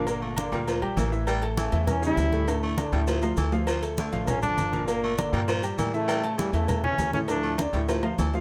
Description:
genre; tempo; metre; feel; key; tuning
latin, salsa; 200 BPM; 4/4; straight; D harmonic minor; A4 = 439 Hz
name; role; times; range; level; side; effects
clear trombone section; melody; 0.0-7.6 s; Bb2 to E4; -32 LUFS; equal; none
clear grand piano; accompaniment; 0.0-8.4 s; A2 to Bb5; -33 LUFS; equal; none
upright bass; bass; 0.0-8.4 s; G1 to A2; -32 LUFS; equal; none
agogo bells and timbales; percussion; 0.1-8.4 s; none; -37 LUFS; equal; none
congas; percussion; 0.1-8.4 s; none; -34 LUFS; equal; none
cowbell; percussion; 0.1-8.3 s; none; -39 LUFS; equal; none
maracas; percussion; 0.1-8.4 s; none; -48 LUFS; equal; none
raspy baritone saxophone; second line; 0.2-8.3 s; D3 to A3; -36 LUFS; equal; none
room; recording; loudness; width
light reverb; none; -26 LUFS; mono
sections
0.0-8.4 A section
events
drum fill 2.5-3.7, 7.6-8.4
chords
0.1 Gm; 1.3 A7; 2.5 Dm; 4.9 Gm; 6.1 A7; 7.3 Dm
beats
| 0.07 0.37 0.67 0.97 | 1.27 1.57 1.87 2.17 | 2.48 2.77 3.08 3.38 | 3.68 3.98 4.28 4.58 | 4.88 5.18 5.48 5.78 | 6.08 6.38 6.68 6.98 | 7.28 7.58 7.88 8.19

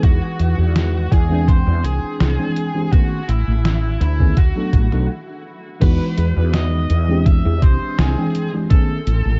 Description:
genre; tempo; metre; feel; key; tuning
vaporwave; 83 BPM; 4/4; swing 53% on 16ths; E major; A4 = 441 Hz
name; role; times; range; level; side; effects
high-gain lead guitar; melody; 0.0-9.4 s; E4 to E5; -30 LUFS; equal; distortion, vintage 12-bit sampler grit, tape echo
mellow FM electric piano; accompaniment; 0.0-9.0 s; D#3 to G5; -25 LUFS; equal; analog chorus, cassette tape
woody fretless electric bass; bass; 0.0-9.4 s; A1 to E2; -20 LUFS; equal; ensemble chorus
detuned 8-bit digital drum machine; drums; 0.0-9.2 s; crash cymbal, hi-hat, snare drum; -26 LUFS; equal; small room ambience, gated reverb
electronic kick drum; drums; 0.0-8.9 s; none; -17 LUFS; equal; small room ambience
room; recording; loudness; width
little or no reverb; cassette tape, nothing above 7.8 kHz; -17 LUFS; mono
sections
0.0-5.8 A section; 5.8-9.4 B section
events
stop 5.1-5.8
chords
0.0 Emaj9; 1.5 E7alt; 2.9 Amaj9#11; 4.4 D6; 5.8 Emaj9; 7.3 E7alt; 8.7 Amaj9#11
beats
| 0.03 0.76 1.48 2.20 | 2.92 3.65 4.37 5.09 | 5.82 6.54 7.26 7.98 | 8.71

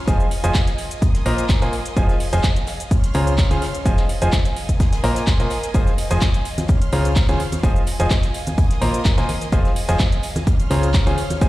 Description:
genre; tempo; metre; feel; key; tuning
piano house; 127 BPM; 4/4; swing 53% on 16ths; F minor; A4 = 440 Hz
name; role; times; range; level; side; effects
rich studio string section; sustained chords; 0.0-11.5 s; Bb4 to F6; -31 LUFS; equal; sidechain pumping
clear concert grand piano; riff; 0.1-11.5 s; Db3 to Bb5; -23 LUFS; equal; sidechain pumping, tape echo
solid FM bass; bass; 0.1-11.5 s; F1 to Db2; -21 LUFS; equal; sidechain pumping
electronic kick drum; drums; 0.1-11.5 s; none; -18 LUFS; equal; none
house drum kit; drums; 0.1-11.5 s; handclaps, hi-hat, shaker; -29 LUFS; equal; none
natural country drum kit; drums; 0.1-11.5 s; hi-hat, snare drum; -40 LUFS; left 2 dB; none
tambourine and congas; percussion; 5.7-11.5 s; none; -28 LUFS; equal; none
room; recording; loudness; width
light reverb, small room ambience; played on a big sound system in a bare room, large studio reverb; -16 LUFS; side -17 dB against mid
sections
0.0-11.5 A section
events
none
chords
0.1 Fm7; 1.0 Bb9sus4; 2.0 Fm7; 2.9 Dbmaj7; 3.9 Fm7; 4.8 Bb9sus4; 5.7 Fm7; 6.7 Dbmaj7; 7.6 Fm7; 8.6 Bb9sus4; 9.5 Fm7; 10.5 Dbmaj7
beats
| 0.08 0.55 1.02 1.49 | 1.97 2.44 2.91 3.38 | 3.86 4.33 4.80 5.27 | 5.75 6.22 6.69 7.16 | 7.63 8.11 8.58 9.05 | 9.53 10.00 10.47 10.94 | 11.41

